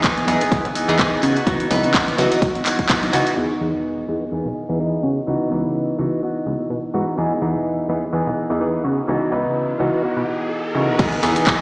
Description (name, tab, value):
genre	filtered disco house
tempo	126 BPM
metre	4/4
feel	swing 56% on 16ths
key	E major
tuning	A4 = 439 Hz
part	clav	accompaniment	0.0-11.6 s	E3 to B4	-22 LUFS	equal	phaser, sidechain pumping, low-pass filter
part	electric guitar with an envelope filter	riff	0.0-11.6 s	D#3 to G#4	-22 LUFS	equal	sidechain pumping, low-pass filter
part	plucky analog bass	bass	0.0-11.6 s	E1 to C#3	-24 LUFS	equal	sidechain pumping, low-pass filter
part	electronic kick drum	drums	0.0-3.0, 11.0-11.6 s	none	-20 LUFS	equal	overdrive
part	house drum kit	drums	0.0-3.4, 11.0-11.6 s	crash cymbal, handclaps, hi-hat, rim click	-22 LUFS	equal	overdrive, sidechain pumping on hats, low-pass filter on hats, low-pass filter on snare, sidechain pumping on cymbals, low-pass filter on cymbals
part	tambourine and congas	percussion	0.0-3.4 s	none	-28 LUFS	equal	sidechain pumping on perc, low-pass filter on perc
part	riser and impact	sound effects	8.8-11.6 s	none	-29 LUFS	equal	none
room	moderate lush hall reverb, RT60 2.2 s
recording	played on a big sound system in a bare room, stone room reverb, small speaker sound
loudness	-17 LUFS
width	side -27 dB against mid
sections	0.0-3.4 A section; 3.4-11.0 B section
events	filter sweep on drum 3.4-11.0; riser 8.8-11.0; impact 11.0-11.6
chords	0.0 Emaj7; 1.2 C#m11; 3.4 Emaj7; 5.0 C#m11; 7.2 Emaj7; 8.8 C#m11; 11.0 Emaj7